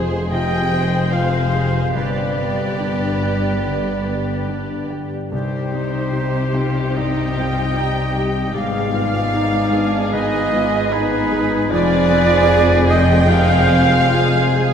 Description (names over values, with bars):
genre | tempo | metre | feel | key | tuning
cinematic, emotional film score for orchestra | 68-78 BPM | 4/4 | rubato | C harmonic minor | A4 = 440 Hz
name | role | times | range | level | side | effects
rich symphonic violin section | melody | 0.0-14.7 s | G4 to Ab4 | -28 LUFS | left 1 dB | none
rich symphonic violin section | second line | 0.0-14.7 s | Cb5 to G5 | -28 LUFS | equal | none
rich symphonic viola section | accompaniment | 0.0-14.7 s | D4 to G5 | -27 LUFS | left 1 dB | none
warm concert grand piano | accompaniment | 0.0-14.7 s | C2 to Ab4 | -26 LUFS | left 1 dB | none
mellow French horn section | sustained chords | 0.0-14.7 s | C3 to Eb4 | -26 LUFS | right 1 dB | none
concert harp | arpeggios | 0.0-14.7 s | F2 to F4 | -24 LUFS | left 3 dB | none
rich symphonic cello section | bass | 0.0-14.7 s | F2 to C3 | -23 LUFS | equal | none
rich symphonic double bass section | bass | 0.0-14.7 s | F1 to C2 | -24 LUFS | equal | none
silver concert flute | second line | 0.3-14.7 s | Cb5 to G5 | -22 LUFS | right 3 dB | none
warm oboe | second line | 0.3-14.7 s | G4 to Eb5 | -28 LUFS | left 4 dB | none
room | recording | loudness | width
wet cathedral reverb, RT60 5.0 s | in a vast, echoing space | -15 LUFS | side -8 dB against mid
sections
0.0-14.7 A section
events
none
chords
0.0 Fm; 2.0 G; 5.3 Cm; 8.6 Abm; 11.7 Fm